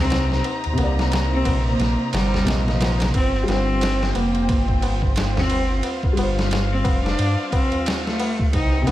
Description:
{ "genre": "trip hop", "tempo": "89 BPM", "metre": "4/4", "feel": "swing 58% on 16ths", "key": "unclear", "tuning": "A4 = 444 Hz", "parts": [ { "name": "clear cello", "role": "melody", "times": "0.0-8.9 s", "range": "F3 to Eb4", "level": "-25 LUFS", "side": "equal", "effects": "vintage 12-bit sampler grit, tape echo" }, { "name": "felt-muted upright piano", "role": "accompaniment", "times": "0.0-8.9 s", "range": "C3 to Eb5", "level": "-27 LUFS", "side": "left 1 dB", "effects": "harmonic tremolo, tape echo" }, { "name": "muted symphonic string section", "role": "sustained chords", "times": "0.0-8.9 s", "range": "Eb3 to Bb5", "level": "-29 LUFS", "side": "left 1 dB", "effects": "none" }, { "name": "dark detuned saw bass", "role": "bass", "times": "0.0-8.9 s", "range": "F1 to G2", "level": "-22 LUFS", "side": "equal", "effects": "none" }, { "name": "trip hop sampler-style drum kit", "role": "drums", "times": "0.1-8.9 s", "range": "kick drum, ride cymbal, snare drum", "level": "-24 LUFS", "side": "equal", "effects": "none" }, { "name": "tabla", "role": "percussion", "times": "0.1-8.9 s", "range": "none", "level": "-31 LUFS", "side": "left 2 dB", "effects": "none" } ], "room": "little or no reverb", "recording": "none", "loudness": "-18 LUFS", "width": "side -14 dB against mid", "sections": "0.0-8.9 A section", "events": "none", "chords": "0.0 Cm7; 3.1 G7sus4" }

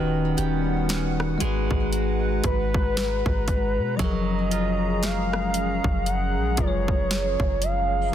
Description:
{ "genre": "contemporary R&B", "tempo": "58 BPM", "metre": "4/4", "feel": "swing 58% on 16ths", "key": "F# major", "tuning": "A4 = 440 Hz", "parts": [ { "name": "bell-like tine electric piano", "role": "accompaniment", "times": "0.0-8.1 s", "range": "D#3 to C#5", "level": "-28 LUFS", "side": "left 6 dB", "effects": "phaser" }, { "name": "hollow soft pad", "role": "sustained chords", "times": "0.0-8.1 s", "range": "D#3 to A#5", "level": "-32 LUFS", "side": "right 1 dB", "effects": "chorus" }, { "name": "nylon-string guitar", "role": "arpeggios", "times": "0.0-8.1 s", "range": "D#3 to G4", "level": "-32 LUFS", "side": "right 7 dB", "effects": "ping-pong delay" }, { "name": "clean 808-style bass", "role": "bass", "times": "0.0-8.1 s", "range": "D#1 to B2", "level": "-27 LUFS", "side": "equal", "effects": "none" }, { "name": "trap drum kit", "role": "drums", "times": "0.4-7.9 s", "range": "hi-hat, kick drum, rim click, snare drum", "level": "-26 LUFS", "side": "equal", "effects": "overdrive" }, { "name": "gliding portamento lead", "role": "melody", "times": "2.5-8.1 s", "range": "B4 to F#5", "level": "-27 LUFS", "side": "right 1 dB", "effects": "chorus, phaser, ping-pong delay" } ], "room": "digital ambience", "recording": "dense, heavily limited modern master", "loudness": "-22 LUFS", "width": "side -10 dB against mid", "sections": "0.0-8.1 A section", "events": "none", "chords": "0.0 D#7alt; 1.4 G#m9; 4.0 F#maj9" }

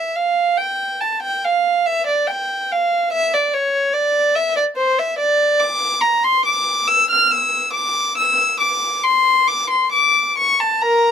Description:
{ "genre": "classical, baroque-style suite movement for unaccompanied violin", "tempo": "70 BPM", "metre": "3/4", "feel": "uneven beats, rubato", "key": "D minor from 5.6 s", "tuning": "A4 = 441 Hz", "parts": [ { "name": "rich violin", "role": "solo", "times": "0.0-11.1 s", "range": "Bb4 to F6", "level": "-15 LUFS", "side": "equal", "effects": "none" } ], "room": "light reverb", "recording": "none", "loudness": "-15 LUFS", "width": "side -8 dB against mid", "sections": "0.0-11.1 A section", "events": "none", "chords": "none" }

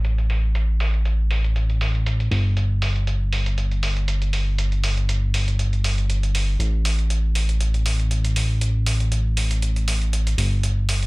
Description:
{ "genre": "nu-disco, nu disco", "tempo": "119 BPM", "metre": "4/4", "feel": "swing 54% on 16ths", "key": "unclear", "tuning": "A4 = 435 Hz", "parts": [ { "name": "fat analog bass", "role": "bass", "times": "0.0-11.1 s", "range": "G1 to A1", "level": "-20 LUFS", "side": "equal", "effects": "none" }, { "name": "electronic hi-hat", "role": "drums", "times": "0.0-11.1 s", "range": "none", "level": "-28 LUFS", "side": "right 1 dB", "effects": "low-pass filter on snare, low-pass filter on hats, low-pass filter on perc, low-pass filter on room" } ], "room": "little or no reverb", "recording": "none", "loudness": "-19 LUFS", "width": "side -24 dB against mid", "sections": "0.0-11.1 A section", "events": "none", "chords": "none" }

